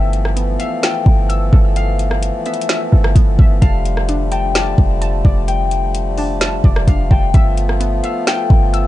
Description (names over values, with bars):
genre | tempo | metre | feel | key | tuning
hip hop, atmospheric cloud-rap | 129 BPM | 4/4 | half-time | unclear | A4 = 440 Hz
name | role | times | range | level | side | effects
concert harp | melody | 0.0-8.9 s | E5 to A5 | -24 LUFS | left 7 dB | low-pass filter, ping-pong delay
pedal harmonium | sustained chords | 0.0-8.9 s | D3 to F4 | -23 LUFS | left 2 dB | sidechain pumping
warbly dusty pluck | arpeggios | 0.0-8.9 s | B3 to E6 | -28 LUFS | right 1 dB | chorus, low-pass filter, ping-pong delay
clean 808-style bass | bass | 0.0-8.9 s | F1 to G1 | -15 LUFS | equal | none
smooth R&B drum kit | drums | 0.1-8.8 s | hi-hat, kick drum, rim click, snare drum | -16 LUFS | equal | none
room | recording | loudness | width
digital ambience | dark, warm production, nothing above 10.3 kHz | -12 LUFS | side -15 dB against mid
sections
0.0-8.9 A section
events
none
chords
0.0 G13; 3.6 F69; 7.3 G13